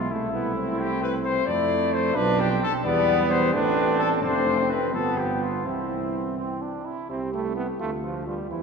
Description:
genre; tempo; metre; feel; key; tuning
classical, brass quintet; 86 BPM (dotted quarters); 6/8; rubato; C major; A4 = 442 Hz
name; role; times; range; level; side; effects
dark cornet; melody; 0.0-8.6 s; E4 to D5; -26 LUFS; left 6 dB; none
dark trumpet; second line; 0.0-8.6 s; B3 to F4; -30 LUFS; right 5 dB; none
bright trombone; accompaniment; 0.0-8.6 s; E3 to D4; -29 LUFS; right 4 dB; none
mellow French horn; accompaniment; 0.0-8.6 s; E3 to G4; -32 LUFS; left 2 dB; none
mellow tuba; bass; 0.0-8.6 s; F1 to F2; -29 LUFS; right 3 dB; none
room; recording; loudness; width
wet church reverb, RT60 3.0 s; minimal, uncompressed stereo recording; -22 LUFS; side -5 dB against mid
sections
0.0-7.1 A section; 7.1-8.6 A section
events
none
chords
0.1 Am/C; 1.5 Fmaj7; 2.2 Bdim; 2.8 Em7; 3.5 Am; 4.2 Dm7/F; 4.9 G7; 5.7 C; 7.8 Dm6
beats
| 0.11 0.79 | 1.47 2.16 | 2.85 3.54 | 4.23 4.93 | 5.65 6.38 | 7.09 7.80 | 8.50

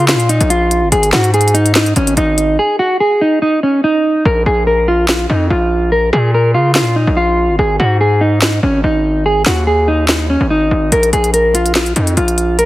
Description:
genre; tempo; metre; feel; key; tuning
hip hop, trap; 144 BPM; 4/4; half-time; Bb minor; A4 = 439 Hz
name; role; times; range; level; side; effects
mellow electric guitar; melody; 0.0-12.7 s; Db4 to Bb4; -13 LUFS; equal; none
distorted 808-style bass; bass; 0.0-12.7 s; Ab1 to Db3; -15 LUFS; equal; distortion
trap drum kit; drums; 0.1-2.5, 5.1-12.7 s; handclaps, hi-hat, snare drum; -16 LUFS; equal; none
room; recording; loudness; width
light reverb; heavily compressed radio sound, multiband compression; -10 LUFS; side -16 dB against mid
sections
0.0-4.3 A section; 4.3-12.7 B section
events
drums muted 2.6-4.3; hi-hats muted 4.3-10.9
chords
0.0 Bbm; 0.9 Ab5; 4.3 Bb5; 7.6 Ab5; 10.9 Bb5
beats
0.09 0.50 | 0.92 1.34 1.75 2.17 | 2.59 3.00 3.42 3.84 | 4.25 4.67 5.09 5.50 | 5.92 6.34 6.75 7.17 | 7.59 8.00 8.42 8.84 | 9.25 9.67 10.09 10.50 | 10.92 11.34 11.75 12.17 | 12.59

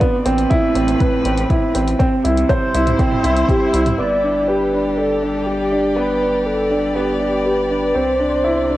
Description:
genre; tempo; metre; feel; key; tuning
piano and strings electronica; 121 BPM; 4/4; straight; unclear; A4 = 440 Hz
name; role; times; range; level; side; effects
rich string quartet; sustained chords; 0.0-8.8 s; A2 to D5; -25 LUFS; left 1 dB; sidechain pumping, cassette tape
dark upright piano; riff; 0.0-8.8 s; B3 to D5; -17 LUFS; right 1 dB; cassette tape, tape echo
deep house drum kit; drums; 0.0-4.0 s; hi-hat, toms; -28 LUFS; equal; none
electronic kick drum; drums; 0.0-3.6 s; none; -18 LUFS; equal; none
round analog bass; bass; 0.3-8.8 s; G1 to C2; -24 LUFS; equal; sidechain pumping
warm velvety synth lead; melody; 4.0-8.8 s; G4 to D5; -20 LUFS; equal; chorus, cassette tape
room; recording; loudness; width
wet spring reverb, RT60 1.2 s; home recording on cassette; -15 LUFS; side -15 dB against mid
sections
0.0-4.0 A section; 4.0-8.8 B section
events
none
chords
0.0 Amadd9; 2.0 C; 4.0 G; 7.9 Cadd9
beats
| 0.01 0.51 1.01 1.50 | 2.00 2.49 2.99 3.48 | 3.98 4.48 4.97 5.47 | 5.96 6.46 6.96 7.45 | 7.95 8.44

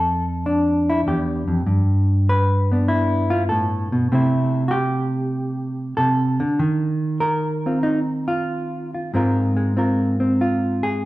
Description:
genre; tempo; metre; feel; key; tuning
solo jazz; 97 BPM; 4/4; swing 69% on 8ths, rubato; unclear; A4 = 438 Hz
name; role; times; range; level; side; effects
hollow-body jazz guitar; solo; 0.0-11.1 s; E2 to B4; -18 LUFS; equal; none
room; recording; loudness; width
wet large studio reverb, RT60 1.1 s; band playing live in one room; -18 LUFS; side -17 dB against mid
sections
0.0-9.1 A section; 9.1-11.1 B section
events
hollow-body jazz guitar solo 9.1-11.1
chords
0.0 Fmaj9; 1.7 G; 4.1 C6; 6.6 Ebsus2; 9.1 Ab69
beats
0.45 1.06 | 1.67 2.28 2.89 3.50 | 4.11 4.73 5.35 5.97 | 6.59 7.22 7.85 8.50 | 9.13 9.76 10.39 11.01

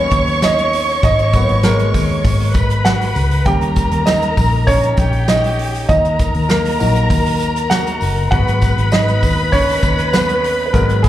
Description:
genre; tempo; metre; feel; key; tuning
piano-driven pop; 99 BPM; 4/4; straight; G# minor; A4 = 442 Hz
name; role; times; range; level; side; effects
warm studio violin section; second line; 0.0-11.1 s; G4 to C#6; -20 LUFS; equal; slapback echo
warm baby grand piano; accompaniment; 0.0-11.1 s; F#3 to G5; -18 LUFS; right 1 dB; slapback echo
vintage muted fingered electric bass; bass; 0.0-11.1 s; F#1 to D#2; -17 LUFS; equal; none
natural country drum kit; drums; 0.1-11.1 s; hi-hat, kick drum, snare drum; -18 LUFS; equal; none
tambourine; percussion; 0.1-11.1 s; none; -36 LUFS; left 2 dB; none
room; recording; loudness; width
light reverb, small room ambience; live gig heard through the venue's PA, club reverb; -12 LUFS; side -13 dB against mid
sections
0.0-11.1 A section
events
grand piano solo 0.0-11.1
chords
0.0 G#m7; 3.5 D#7; 5.9 D#m; 8.3 G#m7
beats
0.42 | 1.03 1.64 2.25 2.85 | 3.46 4.07 4.68 5.28 | 5.89 6.50 7.11 7.71 | 8.32 8.93 9.53 10.14 | 10.75

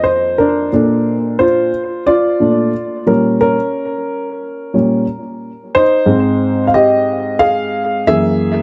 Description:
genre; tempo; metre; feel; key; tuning
hip hop; 90 BPM; 4/4; swing 66% on 16ths; unclear; A4 = 440 Hz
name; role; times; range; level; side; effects
dark upright piano; solo; 0.0-8.6 s; F2 to F5; -14 LUFS; equal; tape echo
room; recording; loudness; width
moderate small room reverb, RT60 0.5 s; dark, warm production; -14 LUFS; mono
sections
0.7-8.6 A section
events
upright piano solo 0.7-8.6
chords
0.0 F7sus4; 0.7 Bbmaj9; 3.1 Eb7/Bb (rootless); 6.1 Ab6; 8.1 Gb9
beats
0.07 | 0.74 1.40 2.07 2.74 | 3.40 4.07 4.74 5.40 | 6.07 6.74 7.40 8.07

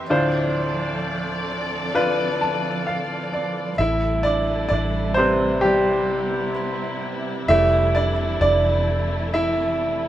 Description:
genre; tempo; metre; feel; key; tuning
pop ballad; 65 BPM; 4/4; straight; A minor; A4 = 440 Hz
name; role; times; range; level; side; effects
bright upright piano; accompaniment; 0.0-10.1 s; D2 to A5; -20 LUFS; equal; none
dark symphonic string section; sustained chords; 0.0-10.1 s; C3 to D5; -28 LUFS; right 1 dB; none
vintage muted fingered electric bass; bass; 3.8-10.1 s; F1 to A1; -24 LUFS; equal; none
room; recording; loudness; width
moderate studio reverb, RT60 0.8 s; band playing live in one room; -19 LUFS; side -12 dB against mid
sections
0.0-3.8 A section; 3.8-10.1 B section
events
upright piano fill 1.9-3.8; upright piano solo 3.8-10.1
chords
0.1 Dm7; 3.8 Am7; 7.5 Fmaj7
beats
| 0.10 1.02 1.95 2.87 | 3.79 4.71 5.64 6.56 | 7.49 8.41 9.33

